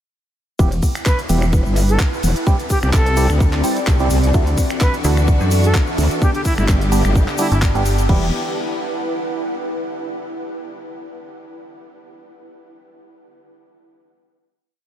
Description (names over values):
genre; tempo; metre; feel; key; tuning
bass house; 128 BPM; 4/4; swing 55% on 16ths; E minor; A4 = 440 Hz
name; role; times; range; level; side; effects
percussive organ stab; stabs; 0.6-8.3 s; G3 to G4; -27 LUFS; right 3 dB; chorus, sidechain pumping, tape echo
metallic wobble bass; bass; 0.6-8.3 s; E1 to D2; -16 LUFS; equal; chorus, tube saturation, sidechain pumping
electronic kick drum; drums; 0.6-8.2 s; none; -17 LUFS; equal; none
garage drum kit; drums; 0.6-8.2 s; crash cymbal, finger snaps, handclaps, hi-hat, ride cymbal; -27 LUFS; equal; none
egg shaker; percussion; 0.6-8.1 s; none; -34 LUFS; left 5 dB; none
ethereal airy pad; texture; 1.0-9.9 s; C4 to A5; -26 LUFS; equal; ensemble chorus, built-in reverb, sidechain pumping
bright reedy silver concert flute; melody; 1.1-7.6 s; E4 to B4; -27 LUFS; right 1 dB; tape echo
rich studio string section; sustained chords; 4.3-8.3 s; D3 to G4; -28 LUFS; left 1 dB; sidechain pumping
metallic FM bass; bass; 5.0-8.1 s; G1 to F#2; -16 LUFS; equal; sidechain pumping
room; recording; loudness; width
light reverb; none; -15 LUFS; side -11 dB against mid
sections
0.6-8.1 drop; 8.1-10.0 final chord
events
drop 0.6-8.1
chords
0.6 Em; 2.5 C; 4.3 Dadd9; 6.2 G; 8.1 Em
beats
| 0.59 1.06 1.53 2.00 | 2.47 2.94 3.40 3.87 | 4.34 4.81 5.28 5.75 | 6.22 6.68 7.15 7.62 | 8.09 8.56 9.03 9.50